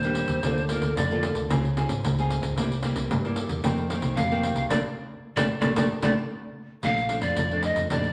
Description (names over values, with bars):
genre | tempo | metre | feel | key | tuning
samba and choro | 112 BPM | 4/4 | straight | Bb major | A4 = 441 Hz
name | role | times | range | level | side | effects
breathy reedy pan flute | melody | 0.0-8.1 s | Bb4 to F5 | -30 LUFS | equal | none
nylon-string guitar | accompaniment | 0.0-8.1 s | F2 to A4 | -31 LUFS | equal | none
vintage muted fingered electric bass | bass | 0.0-8.1 s | Ab1 to G2 | -33 LUFS | equal | none
pandeiro | percussion | 0.0-8.1 s | none | -31 LUFS | equal | none
room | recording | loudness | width
wet large studio reverb, RT60 1.3 s | none | -26 LUFS | mono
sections
0.0-6.8 A section; 6.8-8.1 B section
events
pan flute solo 0.0-6.8; band accent 4.7-6.8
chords
0.4 Bbmaj7/D; 1.5 Dbmaj7; 2.6 C7; 3.6 F7sus4; 4.7 Bbmaj7